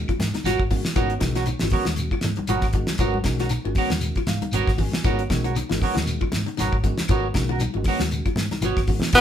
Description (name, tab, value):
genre	afrobeat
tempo	117 BPM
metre	4/4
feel	swing 56% on 16ths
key	G# dorian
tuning	A4 = 440 Hz
part	tine electric piano	accompaniment	0.0-9.2 s	D#3 to G#5	-32 LUFS	equal	overdrive, medium stereo tremolo
part	qanun	arpeggios	0.0-9.2 s	D#4 to F#4	-31 LUFS	left 9 dB	none
part	vintage muted fingered electric bass	bass	0.0-9.2 s	G#1 to G#2	-27 LUFS	equal	none
part	semi-hollow electric guitar	stabs	0.1-9.2 s	B3 to C#5	-27 LUFS	right 5 dB	phaser
part	damped 70s drum kit	drums	0.1-9.2 s	crash cymbal, hi-hat, kick drum, snare drum	-24 LUFS	equal	none
part	claves	percussion	0.1-9.2 s	none	-41 LUFS	left 4 dB	none
part	congas	percussion	0.2-9.1 s	none	-32 LUFS	left 1 dB	none
part	shekere	percussion	0.2-9.2 s	none	-32 LUFS	left 1 dB	none
part	raspy tenor saxophone	melody	9.2 s	B3	-10 LUFS	equal	none
part	growling trumpet	second line	9.2 s	none	barely audible	none	none
room	moderate studio reverb, RT60 0.5 s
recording	band playing live in one room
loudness	-20 LUFS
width	side -10 dB against mid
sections	0.0-9.1 A section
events	tine electric piano fill 4.0-5.0; drum fill 8.6-9.1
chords	0.0 G#m11